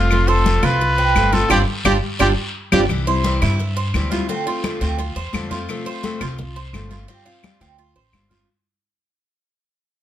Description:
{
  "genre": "latin, Cuban son and guajira",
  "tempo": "172 BPM",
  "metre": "4/4",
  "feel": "straight",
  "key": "C major",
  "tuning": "A4 = 440 Hz",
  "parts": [
    { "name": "clear trumpet", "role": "melody", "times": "0.0-2.8 s", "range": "F4 to B4", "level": "-20 LUFS", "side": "left 1 dB", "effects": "plate reverb" },
    { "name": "nylon-string guitar", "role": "second line", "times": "0.0-2.8 s", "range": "C4 to G4", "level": "-25 LUFS", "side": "right 5 dB", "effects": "none" },
    { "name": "picked steel-string acoustic guitar", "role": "accompaniment", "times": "0.0-8.5 s", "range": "C3 to F4", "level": "-25 LUFS", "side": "left 5 dB", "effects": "none" },
    { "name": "Cuban tres", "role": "arpeggios", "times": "0.0-8.5 s", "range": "C4 to C5", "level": "-24 LUFS", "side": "right 5 dB", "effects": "none" },
    { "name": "upright bass", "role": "bass", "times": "0.0-8.4 s", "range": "F1 to G2", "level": "-21 LUFS", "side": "equal", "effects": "none" },
    { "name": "claves", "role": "percussion", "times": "0.1-8.3 s", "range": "none", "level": "-27 LUFS", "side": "left 4 dB", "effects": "none" },
    { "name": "congas", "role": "percussion", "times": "0.1-8.5 s", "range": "none", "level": "-27 LUFS", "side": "left 3 dB", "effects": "none" },
    { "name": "guiro", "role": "percussion", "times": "0.1-8.5 s", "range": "none", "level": "-32 LUFS", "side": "left 2 dB", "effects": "none" }
  ],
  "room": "light reverb",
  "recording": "none",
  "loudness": "-16 LUFS",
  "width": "side -11 dB against mid",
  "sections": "0.0-2.9 A section; 2.9-8.5 B section",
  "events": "band accent 1.5-2.9; fade-out 2.9-8.5",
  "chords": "0.1 F; 1.5 G7sus4; 2.9 C; 4.3 Dm7; 5.7 F; 7.1 G7sus4"
}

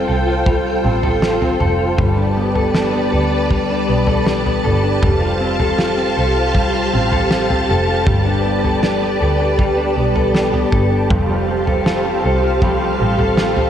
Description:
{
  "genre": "dream pop",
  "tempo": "79 BPM",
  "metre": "4/4",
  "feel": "straight",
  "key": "F lydian",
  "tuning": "A4 = 439 Hz",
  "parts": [
    { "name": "soft string machine", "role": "sustained chords", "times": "0.0-13.7 s", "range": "F4 to A5", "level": "-18 LUFS", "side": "right 1 dB", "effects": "ensemble chorus" },
    { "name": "mellow electric guitar", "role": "arpeggios", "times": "0.0-13.7 s", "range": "G3 to A4", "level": "-20 LUFS", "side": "left 2 dB", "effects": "lush chorus, tape echo" },
    { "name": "rich double bass", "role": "bass", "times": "0.0-13.7 s", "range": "F1 to D2", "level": "-21 LUFS", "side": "equal", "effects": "none" },
    { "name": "loose indie drum kit", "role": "drums", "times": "0.5-13.7 s", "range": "kick drum, snare drum, toms", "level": "-20 LUFS", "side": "equal", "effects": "none" },
    { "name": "mellow electric guitar", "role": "accompaniment", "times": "11.1-13.7 s", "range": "F3 to A4", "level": "-24 LUFS", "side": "right 3 dB", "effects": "tremolo, wide subtle chorus" }
  ],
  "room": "wet lush hall reverb, RT60 1.9 s, small room ambience",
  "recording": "dreamy mix soaked in reverb",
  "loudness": "-14 LUFS",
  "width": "side -9 dB against mid",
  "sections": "0.0-13.7 A section",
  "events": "none",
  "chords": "0.0 Fadd9; 2.0 Gadd9; 5.0 Fadd9; 8.1 Gadd9; 11.1 Fadd9"
}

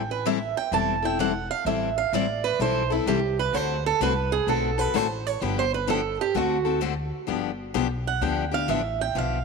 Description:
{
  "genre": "acoustic string swing (jazz manouche)",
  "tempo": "128 BPM",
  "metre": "4/4",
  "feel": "swing 66% on 8ths",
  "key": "G major",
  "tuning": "A4 = 441 Hz",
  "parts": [
    { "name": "picked swing-style acoustic guitar", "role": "melody", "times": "0.0-9.4 s", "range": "E4 to A5", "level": "-26 LUFS", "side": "right 10 dB", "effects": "none" },
    { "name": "upright bass", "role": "bass", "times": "0.0-9.4 s", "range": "E1 to D2", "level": "-30 LUFS", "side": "left 1 dB", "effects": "none" },
    { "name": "picked steel-string acoustic guitar", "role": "accompaniment", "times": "0.3-9.4 s", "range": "D3 to A4", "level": "-27 LUFS", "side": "left 14 dB", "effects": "none" }
  ],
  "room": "moderate plate reverb, RT60 3.7 s",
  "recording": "1960s-style stereo with parts hard left and right",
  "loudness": "-23 LUFS",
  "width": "side -4 dB against mid",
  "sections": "0.0-7.3 A section; 7.3-9.4 A section",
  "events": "steel-string acoustic guitar solo 0.0-9.4",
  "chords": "0.0 Am7; 3.5 D7; 5.4 G7; 6.3 D7; 7.3 G7"
}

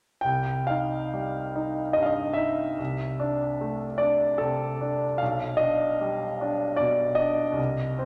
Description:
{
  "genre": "classical, romantic nocturne for solo piano",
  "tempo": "66-77 BPM",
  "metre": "3/4",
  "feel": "rubato",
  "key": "C minor",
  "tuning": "A4 = 439 Hz",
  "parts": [
    { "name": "clear concert grand piano", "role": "solo", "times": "0.2-8.1 s", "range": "B1 to G5", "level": "-26 LUFS", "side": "equal", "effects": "none" }
  ],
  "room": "wet recital hall reverb, RT60 1.7 s",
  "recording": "none",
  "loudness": "-26 LUFS",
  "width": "mono",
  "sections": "0.2-8.1 A section",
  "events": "none",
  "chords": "0.2 Cm; 2.8 D5/C; 5.2 G/B"
}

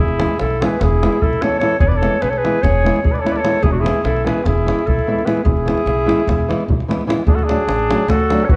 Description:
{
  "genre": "balkan folk, Balkan wedding band",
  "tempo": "296 BPM (eighths)",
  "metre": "9/8",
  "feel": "straight",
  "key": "E mixolydian",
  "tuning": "A4 = 441 Hz",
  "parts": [
    { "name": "dark clarinet", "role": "melody", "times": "0.0-8.6 s", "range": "F#4 to D5", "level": "-22 LUFS", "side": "equal", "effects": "none" },
    { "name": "mellow trumpet", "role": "second line", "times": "0.0-8.6 s", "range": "D4 to B4", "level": "-27 LUFS", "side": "equal", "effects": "none" },
    { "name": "upright bass", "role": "bass", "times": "0.0-8.6 s", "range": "E1 to D2", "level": "-22 LUFS", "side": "equal", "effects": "none" },
    { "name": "davul", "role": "percussion", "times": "0.1-8.6 s", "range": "none", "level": "-22 LUFS", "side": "equal", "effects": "none" },
    { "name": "nylon-string guitar", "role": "accompaniment", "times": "0.2-8.4 s", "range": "E3 to F#4", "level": "-24 LUFS", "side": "equal", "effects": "none" }
  ],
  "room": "moderate recital hall reverb, RT60 1.5 s",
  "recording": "dark, warm production",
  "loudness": "-17 LUFS",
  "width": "mono",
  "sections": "0.0-7.3 A section; 7.3-8.6 A section",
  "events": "none",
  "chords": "0.0 E; 7.3 D"
}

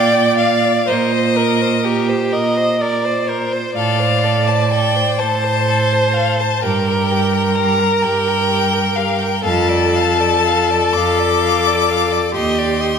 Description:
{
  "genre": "classical, slow romantic movement for string quartet",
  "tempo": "42 BPM (dotted quarters)",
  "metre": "6/8",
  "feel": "rubato",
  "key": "unclear",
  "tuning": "A4 = 440 Hz",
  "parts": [
    { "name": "clear violin", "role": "melody", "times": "0.0-13.0 s", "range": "Eb5 to D6", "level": "-19 LUFS", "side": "left 7 dB", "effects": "none" },
    { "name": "clear violin", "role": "second line", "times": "0.0-13.0 s", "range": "G4 to F5", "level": "-23 LUFS", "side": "left 4 dB", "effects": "none" },
    { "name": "rich viola", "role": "accompaniment", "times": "0.0-13.0 s", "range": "G4 to Eb5", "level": "-18 LUFS", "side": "right 1 dB", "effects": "none" },
    { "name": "rich cello", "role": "bass", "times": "0.0-13.0 s", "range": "Eb2 to Bb2", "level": "-19 LUFS", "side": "right 4 dB", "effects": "none" }
  ],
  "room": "moderate concert hall reverb, RT60 2.2 s",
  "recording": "none",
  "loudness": "-14 LUFS",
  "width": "side -6 dB against mid",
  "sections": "0.0-13.0 A section",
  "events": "none",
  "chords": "0.0 Bb; 0.9 Cm7/Bb; 3.8 Amadd11; 6.6 Gm; 9.4 Dm/F; 12.3 Ebmaj7"
}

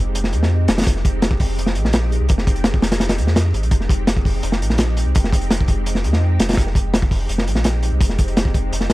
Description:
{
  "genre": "drum and bass, jungle",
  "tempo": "168 BPM",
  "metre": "4/4",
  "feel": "straight",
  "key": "F minor",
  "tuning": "A4 = 440 Hz",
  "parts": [
    { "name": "saturated sub bass", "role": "bass", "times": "0.0-8.9 s", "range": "F1 to F2", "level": "-20 LUFS", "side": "equal", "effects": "none" },
    { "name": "crunchy breakbeat drum kit", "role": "drums", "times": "0.1-8.9 s", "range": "hi-hat, kick drum, snare drum", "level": "-18 LUFS", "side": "equal", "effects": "none" }
  ],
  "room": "little or no reverb",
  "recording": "dark, warm production",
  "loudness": "-15 LUFS",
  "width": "side -18 dB against mid",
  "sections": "0.0-8.9 A section",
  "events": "none",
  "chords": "none"
}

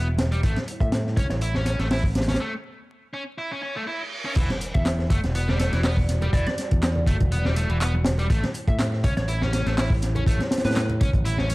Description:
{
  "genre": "breakbeat, breaks",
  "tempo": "122 BPM",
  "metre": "4/4",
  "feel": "swing 54% on 16ths",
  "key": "E dorian",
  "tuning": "A4 = 440 Hz",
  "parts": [
    { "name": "dark analog pad", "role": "sustained chords", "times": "0.0-11.5 s", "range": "G3 to E5", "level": "-35 LUFS", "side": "equal", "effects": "chorus, phaser, vintage 12-bit sampler grit, sidechain pumping" },
    { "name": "biting overdriven guitar", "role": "riff", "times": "0.0-11.5 s", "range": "E3 to E4", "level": "-31 LUFS", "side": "equal", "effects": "tube saturation, dub echo" },
    { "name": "growling fingered electric bass", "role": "bass", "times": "0.0-11.5 s", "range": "E1 to A2", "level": "-24 LUFS", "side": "equal", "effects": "overdrive" },
    { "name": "crunchy breakbeat drum kit", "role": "drums", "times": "0.2-11.5 s", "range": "crash cymbal, hi-hat, kick drum, snare drum", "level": "-24 LUFS", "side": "equal", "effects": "none" },
    { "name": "punchy analog drum machine", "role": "drums", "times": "0.2-11.5 s", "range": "handclaps, hi-hat", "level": "-36 LUFS", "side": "equal", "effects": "overdrive" },
    { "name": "congas and bongos", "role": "percussion", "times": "0.2-11.5 s", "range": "none", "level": "-34 LUFS", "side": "right 1 dB", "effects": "none" },
    { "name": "hollow square pluck", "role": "melody", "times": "0.8-1.4, 4.7-10.8 s", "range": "B4 to E5", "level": "-35 LUFS", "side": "equal", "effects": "chorus, AM radio sound, dub echo" },
    { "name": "reverse cymbal and impact", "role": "sound effects", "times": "3.6-6.3 s", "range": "none", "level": "-36 LUFS", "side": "right 1 dB", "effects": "none" }
  ],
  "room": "studio ambience",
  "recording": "dark, warm production, vinyl crackle",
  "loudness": "-21 LUFS",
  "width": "side -21 dB against mid",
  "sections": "0.0-4.4 A section; 4.4-11.5 B section",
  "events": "break 2.4-4.4; reverse cymbal 3.6-4.4; drop 4.4-11.5; impact 4.4-6.3",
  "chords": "0.4 A7; 4.4 Em9; 8.3 A7"
}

